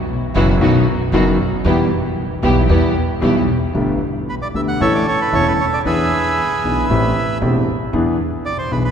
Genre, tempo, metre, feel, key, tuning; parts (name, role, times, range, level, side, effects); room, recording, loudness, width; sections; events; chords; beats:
tango; 115 BPM; 4/4; rubato; E minor, G major from 3.8 s; A4 = 440 Hz
upright bass; bass; 0.3-8.9 s; E1 to E2; -21 LUFS; right 1 dB
warm concert grand piano; accompaniment; 0.4-8.9 s; E1 to A4; -17 LUFS; left 2 dB
muted studio string section; stabs; 0.4-3.4 s; B3 to G4; -25 LUFS; right 2 dB
bandoneon; melody; 4.3-8.9 s; G#4 to F#5; -19 LUFS; right 3 dB
wet cathedral reverb, RT60 4.5 s; recorded in a church or concert hall; -14 LUFS; side -8 dB against mid
0.0-3.8 A section; 3.8-8.9 B section
0.0 Bsus4; 0.6 B; 1.6 Em; 3.8 Gadd9; 4.8 A; 5.9 E7; 6.9 Am7; 7.9 E7
0.10 0.61 1.13 | 1.65 2.17 2.69 3.22 | 3.75 4.28 4.81 5.33 | 5.86 6.38 6.90 7.42 | 7.93 8.45